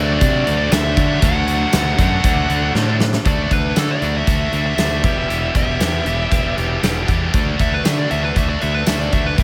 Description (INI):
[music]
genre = classic rock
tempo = 118 BPM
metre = 4/4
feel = straight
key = unclear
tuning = A4 = 439 Hz
[part]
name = nasal lead guitar with a parked wah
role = melody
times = 0.0-9.4 s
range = A4 to F#5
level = -25 LUFS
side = equal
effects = overdrive
[part]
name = overdriven tonewheel organ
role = sustained chords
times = 0.0-9.4 s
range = G3 to E5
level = -35 LUFS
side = equal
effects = none
[part]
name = tight distorted guitar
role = riff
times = 0.0-9.4 s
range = E2 to G4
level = -24 LUFS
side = equal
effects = distortion
[part]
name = growling fingered electric bass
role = bass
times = 0.0-9.4 s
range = E1 to D3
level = -23 LUFS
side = equal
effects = overdrive
[part]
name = big rock drum kit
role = drums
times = 0.2-9.4 s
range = hi-hat, kick drum, snare drum, tambourine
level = -22 LUFS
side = equal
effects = none
[sound]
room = light reverb, small room ambience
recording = none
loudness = -17 LUFS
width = mono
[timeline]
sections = 0.0-3.3 A section; 3.3-9.4 B section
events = drum fill 2.8-3.3; lead electric guitar solo 3.3-9.4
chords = 0.0 D; 5.0 Em; 7.3 D